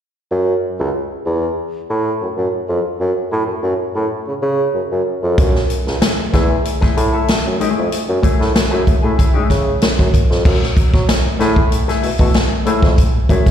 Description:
funk; 95 BPM; 4/4; straight; F# minor; A4 = 440 Hz
warm bassoon; bass; 0.3-13.4 s; C#2 to F#3; -18 LUFS; right 1 dB
swinging big-band drum kit; drums; 5.4-13.5 s; crash cymbal, hi-hat, kick drum, snare drum; -14 LUFS; equal
electric guitar with an envelope filter; accompaniment; 6.3-13.5 s; A3 to A4; -20 LUFS; left 5 dB; wide subtle chorus, plate reverb, slapback echo
light reverb; live gig heard through the venue's PA, recital hall reverb; -14 LUFS; side -9 dB against mid
0.3-10.4 A section; 10.4-13.5 B section
0.3 F#m9

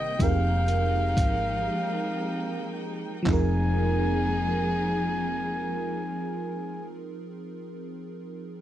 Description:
slow six-eight R&B; 36-42 BPM (dotted quarters); 6/8; straight; F minor; A4 = 441 Hz
warm flugelhorn; melody; 0.0-6.9 s; Eb5 to Ab5; -31 LUFS; equal; slapback echo
FM electric piano with soft pad layer; accompaniment; 0.0-8.6 s; C3 to Bb4; -30 LUFS; right 1 dB; chorus
dark chamber string section; sustained chords; 0.0-6.9 s; Eb3 to G5; -34 LUFS; left 2 dB
vintage muted fingered electric bass; bass; 0.0-6.9 s; F1 to Ab1; -28 LUFS; equal
dusty soul sampler-style drum kit; drums; 0.2-3.5 s; handclaps, hi-hat, kick drum; -25 LUFS; equal
little or no reverb; dry, close 1970s-style studio recording; -24 LUFS; side -12 dB against mid
0.0-3.3 A section; 3.3-6.6 B section
slowing down 0.0-3.3; break 1.7-3.3
0.2 Fm11; 3.3 Fm7

